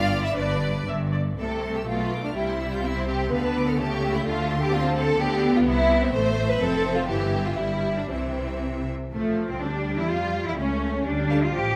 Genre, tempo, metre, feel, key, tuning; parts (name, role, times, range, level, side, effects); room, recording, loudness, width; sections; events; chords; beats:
quick classical-period movement for string orchestra; 114-130 BPM; 2/4; rubato; C major; A4 = 441 Hz
bright symphonic violin section; melody; 0.0-11.4 s; A3 to G6; -38 LUFS; equal
rich symphonic violin section; second line; 0.0-11.4 s; A3 to F5; -29 LUFS; equal
rich symphonic viola section; accompaniment; 0.0-11.8 s; E3 to E5; -31 LUFS; equal
rich symphonic cello section; bass; 0.0-11.8 s; F2 to G4; -32 LUFS; equal
rich symphonic double bass section; bass; 0.0-11.8 s; F1 to F2; -31 LUFS; equal
moderate scoring stage reverb, RT60 1.7 s; -25 LUFS; mono
0.0-1.4 A section; 1.4-9.1 B section; 9.1-11.8 C section
0.4 G; 1.4 C; 1.9 G7/B; 2.3 C; 3.3 Dm; 3.8 A7/C#; 4.3 Dm7; 5.2 G7/D; 5.7 C; 6.1 Am; 6.6 F; 7.1 Em/G; 8.1 C; 9.1 F/A; 9.6 G5/D; 10.1 A; 11.1 Dm
| 0.36 0.87 | 1.38 1.87 | 2.35 2.83 | 3.31 3.79 | 4.26 4.72 | 5.19 5.66 | 6.14 6.61 | 7.09 7.58 | 8.10 8.62 | 9.13 9.62 | 10.10 10.59 | 11.07 11.55